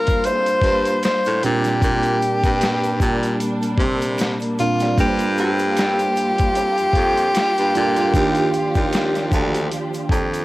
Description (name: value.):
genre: R&B, neo-soul.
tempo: 76 BPM.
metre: 4/4.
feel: swing 54% on 16ths.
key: G minor.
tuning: A4 = 440 Hz.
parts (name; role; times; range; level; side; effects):
warm tenor saxophone; melody; 0.0-10.4 s; F4 to C5; -20 LUFS; left 1 dB; cassette tape.
mellow tine electric piano; accompaniment; 0.0-10.4 s; Bb2 to A5; -25 LUFS; right 4 dB; overdrive, phaser, cassette tape.
warm studio string section; sustained chords; 0.0-10.4 s; F3 to G4; -26 LUFS; equal; cassette tape.
edgy baritone saxophone; bass; 0.0-10.4 s; D2 to C3; -23 LUFS; equal; none.
dusty soul sampler-style drum kit; drums; 0.1-10.4 s; hi-hat, kick drum, snare drum; -23 LUFS; equal; none.
egg shaker and finger snaps; percussion; 0.1-10.4 s; none; -40 LUFS; right 7 dB; none.
electric guitar through a small old amp; second line; 0.2-10.3 s; F3 to A4; -32 LUFS; right 5 dB; wah, cassette tape, analog delay.
room: light reverb, small room ambience.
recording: home recording on cassette.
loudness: -16 LUFS.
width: side -18 dB against mid.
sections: 0.0-10.4 A section.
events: none.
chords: 0.0 Gm11; 1.4 Bb69; 5.0 Gm11; 8.1 Ebmaj9.